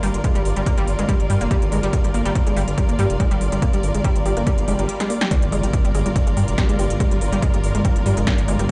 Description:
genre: driving peak-time techno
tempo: 142 BPM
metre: 4/4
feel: straight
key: G phrygian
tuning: A4 = 440 Hz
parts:
  - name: analog pluck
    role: riff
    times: 0.0-8.6 s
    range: G3 to G4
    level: -27 LUFS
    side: equal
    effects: chorus, overdrive, sidechain pumping, delay
  - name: gritty driven synth bass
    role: bass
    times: 0.0-8.7 s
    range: F1 to G2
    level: -24 LUFS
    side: equal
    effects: sidechain pumping
  - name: techno drum kit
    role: drums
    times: 0.0-8.7 s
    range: hi-hat, snare drum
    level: -31 LUFS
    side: equal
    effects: none
  - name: warm studio string section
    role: texture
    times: 0.0-8.7 s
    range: F4 to D5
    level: -30 LUFS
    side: equal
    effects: sidechain pumping
  - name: electronic kick drum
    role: drums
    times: 0.2-8.4 s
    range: none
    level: -22 LUFS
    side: equal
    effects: none
  - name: swell and impact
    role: sound effects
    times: 4.6-7.0 s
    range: none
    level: -31 LUFS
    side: equal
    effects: none
  - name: metallic inharmonic drone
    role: drone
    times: 6.1-8.7 s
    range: G2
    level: -32 LUFS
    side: equal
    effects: none
room: little or no reverb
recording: played on a big sound system in a bare room, large studio reverb, nothing above 10.6 kHz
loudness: -20 LUFS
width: mono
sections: 0.0-5.3 A section; 5.3-8.7 B section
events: drum fill 5.0-5.3; drop 5.3-8.7; impact 5.3-7.0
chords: 0.0 Gm

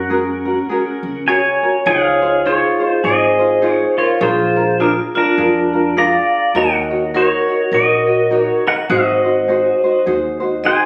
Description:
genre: Hawaiian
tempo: 102 BPM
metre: 4/4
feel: swing 60% on 8ths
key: Db major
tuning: A4 = 440 Hz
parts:
  - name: pedal steel guitar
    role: melody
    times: 0.0-10.9 s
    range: D4 to Bb5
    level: -19 LUFS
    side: equal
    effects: none
  - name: vibraphone with medium mallets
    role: second line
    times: 0.0-10.9 s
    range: C#4 to F5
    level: -20 LUFS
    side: equal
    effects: none
  - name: tenor ukulele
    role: accompaniment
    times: 0.0-10.9 s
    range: C#4 to Db5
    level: -22 LUFS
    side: equal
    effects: none
  - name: upright bass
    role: bass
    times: 0.0-10.7 s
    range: Ab1 to F#2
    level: -30 LUFS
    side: equal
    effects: none
room: light reverb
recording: recorded on a phone in the room, studio reverb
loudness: -15 LUFS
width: mono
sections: 0.0-1.9 A section; 1.9-10.9 B section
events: none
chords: 0.0 F#add9; 1.9 Dbmaj9; 4.2 Bb7; 6.6 Ebm7; 8.9 Ab7

